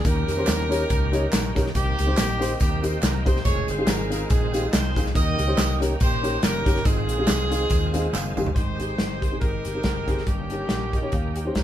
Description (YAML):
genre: uptempo gospel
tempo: 141 BPM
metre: 4/4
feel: swing 56% on 8ths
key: Ab major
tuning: A4 = 439 Hz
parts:
  - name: warm horn section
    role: melody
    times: 0.0-11.6 s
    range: Bb3 to Eb5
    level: -28 LUFS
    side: right 1 dB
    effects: none
  - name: bright tonewheel organ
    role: sustained chords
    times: 0.0-11.6 s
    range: Eb3 to G4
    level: -34 LUFS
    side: right 2 dB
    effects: slow rotary speaker, chorus vibrato
  - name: vintage muted fingered electric bass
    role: bass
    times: 0.0-11.6 s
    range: Fb1 to F2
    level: -27 LUFS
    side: equal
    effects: none
  - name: natural country drum kit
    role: drums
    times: 0.0-11.6 s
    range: hi-hat, kick drum, snare drum, toms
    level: -24 LUFS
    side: equal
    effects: none
  - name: tambourine and handclaps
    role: percussion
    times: 0.0-8.5 s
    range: none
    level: -35 LUFS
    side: right 4 dB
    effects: none
  - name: dark upright piano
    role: accompaniment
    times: 0.1-11.6 s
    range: G2 to Bb5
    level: -29 LUFS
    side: left 2 dB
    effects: none
room: light reverb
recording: band playing live in one room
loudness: -20 LUFS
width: side -11 dB against mid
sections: 0.0-8.6 A section; 8.6-11.6 B section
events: upright piano fill 0.9-1.7, 7.7-8.6, 10.7-11.6; drum fill 8.1-8.6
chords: 0.0 Eb7; 1.7 Cm7; 3.4 Fm7; 5.1 Eb7; 6.9 Ab6; 8.6 Abmaj7; 10.3 Eb7/G